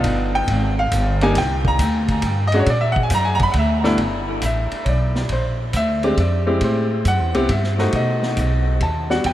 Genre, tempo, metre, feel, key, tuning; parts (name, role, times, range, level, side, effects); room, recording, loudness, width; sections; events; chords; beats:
jazz piano trio; 137 BPM; 3/4; swing 67% on 8ths; G major from 4.0 s; A4 = 443 Hz
bright upright piano; melody; 0.0-9.3 s; G2 to Cb6; -20 LUFS; equal; diffuse ambient delay
upright bass; bass; 0.0-9.3 s; G1 to B2; -20 LUFS; equal
vintage drum kit; drums; 0.0-9.3 s; hi-hat, kick drum, ride cymbal, snare drum; -27 LUFS; equal
moderate huge ambient reverb, RT60 6.9 s; dreamy mix soaked in reverb; -16 LUFS; side -13 dB against mid
0.0-4.0 A section; 4.0-9.3 B section
upright piano solo 0.0-4.0
0.0 G7b13; 1.4 Csus2; 2.7 Gbadd9; 3.5 D5; 4.0 G69; 5.3 Bb9; 6.6 Am7; 7.9 B7b9
| 0.04 0.48 0.92 | 1.35 1.79 2.23 | 2.67 3.11 3.54 | 3.98 4.42 4.86 | 5.30 5.74 6.17 | 6.61 7.05 7.49 | 7.93 8.37 8.80 | 9.24